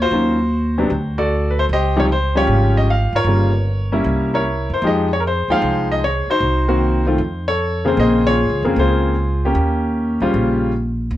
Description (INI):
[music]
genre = jazz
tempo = 153 BPM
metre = 4/4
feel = swing 67% on 8ths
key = unclear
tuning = A4 = 440 Hz
[part]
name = warm grand piano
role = melody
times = 0.0-10.7 s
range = C3 to G5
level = -17 LUFS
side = left 1 dB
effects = none
[part]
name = upright bass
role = bass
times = 0.0-11.2 s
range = G1 to Gb2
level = -19 LUFS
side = right 1 dB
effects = none
[sound]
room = light reverb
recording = dark, warm production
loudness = -15 LUFS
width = side -14 dB against mid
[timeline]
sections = 0.0-11.1 A section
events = none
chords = 0.1 Ebm9; 0.9 D; 1.7 Dbmaj9#11; 3.3 Gm7b5; 4.0 C7b9; 4.8 Fm9; 6.4 Cm7b5; 7.2 F7; 8.0 Bbm9; 9.6 Eb13